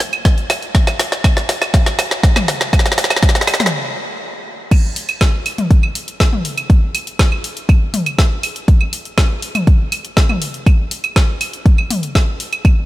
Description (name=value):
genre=techno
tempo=121 BPM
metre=4/4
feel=straight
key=none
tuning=none
part: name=deep house drum kit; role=drums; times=0.0-12.7 s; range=claves, crash cymbal, hi-hat, snare drum, toms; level=-17 LUFS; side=equal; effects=studio reverb
part: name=electronic kick drum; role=drums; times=0.3-12.7 s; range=none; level=-12 LUFS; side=equal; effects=studio reverb
room=light reverb, digital ambience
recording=none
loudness=-13 LUFS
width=side -16 dB against mid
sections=0.0-4.7 A section; 4.7-12.9 B section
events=build-up 0.0-4.7; drum fill 0.0-3.7; stop 3.7-4.7; drop 4.7-12.9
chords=none